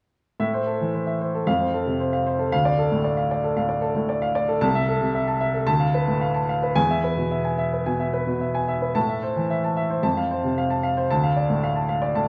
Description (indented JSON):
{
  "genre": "classical, virtuoso piano study",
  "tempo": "113 BPM",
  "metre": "4/4",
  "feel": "rubato",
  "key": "A minor",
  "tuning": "A4 = 441 Hz",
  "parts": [
    { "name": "warm baby grand piano", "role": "solo", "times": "0.4-12.3 s", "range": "C2 to A5", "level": "-23 LUFS", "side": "equal", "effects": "none" }
  ],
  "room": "wet recital hall reverb, RT60 1.4 s",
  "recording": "none",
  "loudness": "-23 LUFS",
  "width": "mono",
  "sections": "0.4-12.3 A section",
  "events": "none",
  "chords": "0.4 Am; 1.5 F; 2.5 Dm; 4.6 Am/C; 5.7 Bm7b5/D; 6.8 E; 9.0 Am; 10.0 F; 11.1 Dm",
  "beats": "| 0.39 0.93 1.47 2.00 | 2.52 3.05 3.57 4.10 | 4.62 5.15 5.68 6.21 | 6.76 7.31 7.86 8.41 | 8.95 9.50 10.03 10.57 | 11.09 11.62 12.14"
}